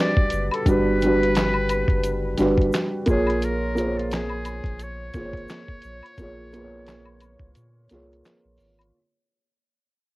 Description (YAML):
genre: lo-fi hip hop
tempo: 87 BPM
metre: 4/4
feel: swing 55% on 16ths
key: unclear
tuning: A4 = 443 Hz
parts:
  - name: trumpet with metal mute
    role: melody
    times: 0.0-8.3 s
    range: E#4 to D5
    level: -29 LUFS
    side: left 1 dB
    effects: low-pass filter, cassette tape, tape echo, plate reverb
  - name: felt-muted upright piano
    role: accompaniment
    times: 0.0-9.0 s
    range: G3 to C#5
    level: -23 LUFS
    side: right 1 dB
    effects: low-pass filter, cassette tape, plate reverb
  - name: dusty soul sampler-style drum kit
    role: drums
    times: 0.2-8.9 s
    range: handclaps, hi-hat, kick drum, snare drum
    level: -24 LUFS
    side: equal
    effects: vintage 12-bit sampler grit, cassette tape
  - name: soft dub sub bass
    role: bass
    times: 0.3-8.9 s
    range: F#1 to A#2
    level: -30 LUFS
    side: equal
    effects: none
  - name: tube shaker and woodblock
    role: percussion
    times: 0.3-8.9 s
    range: none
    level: -33 LUFS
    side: left 3 dB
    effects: none
room: moderate booth ambience, RT60 0.2 s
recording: home recording on cassette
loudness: -20 LUFS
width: side -19 dB against mid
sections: 0.0-8.9 A section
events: fade-out 0.0-8.9; break 7.6-8.9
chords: 0.0 Gmaj7; 3.1 A#m7